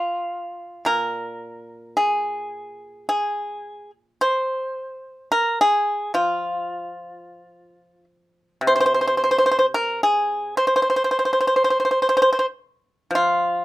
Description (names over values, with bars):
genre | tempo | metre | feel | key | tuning
chinese traditional | 54 BPM | 4/4 | rubato | unclear | A4 = 440 Hz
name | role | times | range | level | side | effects
pipa | solo | 0.0-13.6 s | Bb2 to C5 | -19 LUFS | equal | none
room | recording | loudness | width
light reverb | rough home demo mix | -19 LUFS | side -16 dB against mid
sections
0.0-13.6 A section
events
none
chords
none